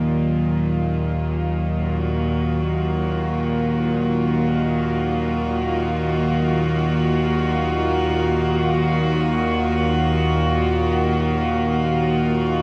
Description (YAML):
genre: dark ambient drone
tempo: free time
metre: none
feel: none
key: Eb minor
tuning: A4 = 442 Hz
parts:
  - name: rich symphonic cello section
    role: sustained chords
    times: 0.0-12.6 s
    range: Eb3 to Gb4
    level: -23 LUFS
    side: equal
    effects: none
  - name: bowed-like drone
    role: drone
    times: 0.0-12.6 s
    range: Eb2 to Bb2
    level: -25 LUFS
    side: equal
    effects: built-in reverb
  - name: quartz singing bowl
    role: texture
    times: 0.0-12.6 s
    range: Gb3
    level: -35 LUFS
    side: equal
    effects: none
room: wet cathedral reverb, RT60 5.6 s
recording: dark, warm production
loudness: -21 LUFS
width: mono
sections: 0.0-12.6 A section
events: none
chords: 0.0 Ebmadd9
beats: free time